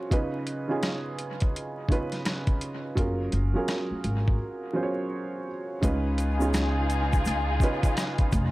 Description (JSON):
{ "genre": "hip hop, boom-bap hip-hop", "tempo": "84 BPM", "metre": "4/4", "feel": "swing 62% on 16ths", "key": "unclear", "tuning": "A4 = 440 Hz", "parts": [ { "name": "dark upright piano", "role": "accompaniment", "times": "0.0-8.5 s", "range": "C#3 to C#5", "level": "-30 LUFS", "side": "right 2 dB", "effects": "high-pass filter, low-pass filter" }, { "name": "dusty soul sampler-style drum kit", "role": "drums", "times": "0.1-8.5 s", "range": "hi-hat, kick drum, rim click, snare drum", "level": "-27 LUFS", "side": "equal", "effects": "none" }, { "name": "upright bass", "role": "bass", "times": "3.0-8.5 s", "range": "E#1 to C#2", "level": "-27 LUFS", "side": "equal", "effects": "none" }, { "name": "warm studio string section", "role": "stabs", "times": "5.8-8.5 s", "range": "D#4 to G#4", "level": "-31 LUFS", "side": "left 2 dB", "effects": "high-pass filter, low-pass filter, dub echo" }, { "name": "tube shaker", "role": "percussion", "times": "5.8-8.5 s", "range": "none", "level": "-45 LUFS", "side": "left 4 dB", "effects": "none" } ], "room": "small room ambience", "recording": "echo-heavy mix, vinyl crackle", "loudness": "-25 LUFS", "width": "side -18 dB against mid", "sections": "0.0-5.8 A section; 5.8-8.5 B section", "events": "break 0.0-3.0, 4.4-5.8", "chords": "0.1 C#9; 3.0 F#maj7; 5.8 C#9" }